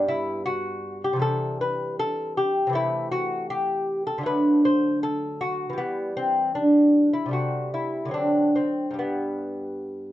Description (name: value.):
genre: classical, baroque-style dance for lute.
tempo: 67-81 BPM.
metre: 4/4.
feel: rubato.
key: unclear.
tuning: A4 = 440 Hz.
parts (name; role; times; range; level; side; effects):
lute; solo; 0.0-10.1 s; G2 to C5; -22 LUFS; equal; none.
room: light reverb.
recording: nothing above 7.9 kHz.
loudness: -22 LUFS.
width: side -14 dB against mid.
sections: 0.0-10.1 A section.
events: none.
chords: 0.0 G; 1.2 C; 2.8 Am/C; 4.3 D; 5.8 Em; 7.3 Am7/C; 8.2 D7; 9.0 N.C..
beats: 0.47 1.23 2.00 | 2.76 3.50 4.27 5.05 | 5.81 6.57 7.34 8.16 | 9.02 9.90.